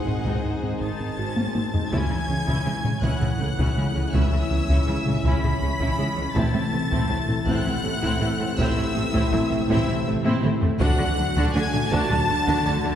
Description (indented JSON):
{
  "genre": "cinematic, hybrid orchestral and electronic film score",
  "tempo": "54 BPM (dotted quarters)",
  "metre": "6/8",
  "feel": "straight",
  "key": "C# phrygian",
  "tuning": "A4 = 439 Hz",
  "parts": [
    { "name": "clear symphonic violin section", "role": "melody", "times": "0.0-13.0 s", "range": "F#5 to B6", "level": "-32 LUFS", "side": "left 2 dB", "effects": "none" },
    { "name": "clear studio violin section", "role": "second line", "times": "0.0-13.0 s", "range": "G#4 to B5", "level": "-31 LUFS", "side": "left 1 dB", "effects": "none" },
    { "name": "mellow French horn section", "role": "sustained chords", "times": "0.0-13.0 s", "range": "C3 to C5", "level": "-32 LUFS", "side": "left 3 dB", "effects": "none" },
    { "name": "phased analog pad", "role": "sustained chords", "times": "0.0-13.0 s", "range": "C3 to G#5", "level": "-33 LUFS", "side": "equal", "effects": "phaser, chorus" },
    { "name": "felt-muted upright piano", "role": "texture", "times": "0.0-13.0 s", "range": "A3 to G#5", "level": "-38 LUFS", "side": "left 1 dB", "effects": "none" },
    { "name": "rich symphonic viola section", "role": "accompaniment", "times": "0.1-12.9 s", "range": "G#3 to G#4", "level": "-32 LUFS", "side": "right 1 dB", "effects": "none" },
    { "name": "soft round pluck", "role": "arpeggios", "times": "0.1-13.0 s", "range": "C#3 to A4", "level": "-32 LUFS", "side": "left 1 dB", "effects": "chorus" },
    { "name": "smooth synth bass", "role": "riff", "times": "0.1-13.0 s", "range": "C#2 to A3", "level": "-29 LUFS", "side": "right 1 dB", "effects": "none" },
    { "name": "rich symphonic cello section", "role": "bass", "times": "0.1-12.9 s", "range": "G#2 to D3", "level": "-30 LUFS", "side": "right 2 dB", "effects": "none" },
    { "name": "rich symphonic double bass section", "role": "bass", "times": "0.1-12.7 s", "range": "G#1 to D2", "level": "-31 LUFS", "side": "right 2 dB", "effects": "none" },
    { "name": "taiko ensemble", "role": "drums", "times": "0.1-13.0 s", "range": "none", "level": "-26 LUFS", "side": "left 1 dB", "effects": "none" }
  ],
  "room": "wet scoring stage reverb, RT60 2.0 s",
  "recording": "heard from further back in the room",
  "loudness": "-20 LUFS",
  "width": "side -10 dB against mid",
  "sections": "0.0-1.9 A section; 1.9-13.0 B section",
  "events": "drum fill 1.4-1.9, 10.3-10.8",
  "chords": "0.0 G#7; 1.9 C#m; 6.4 Am; 10.8 D",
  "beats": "0.81 | 1.92 3.03 | 4.14 5.25 | 6.36 7.47 | 8.59 9.70 | 10.81 11.92"
}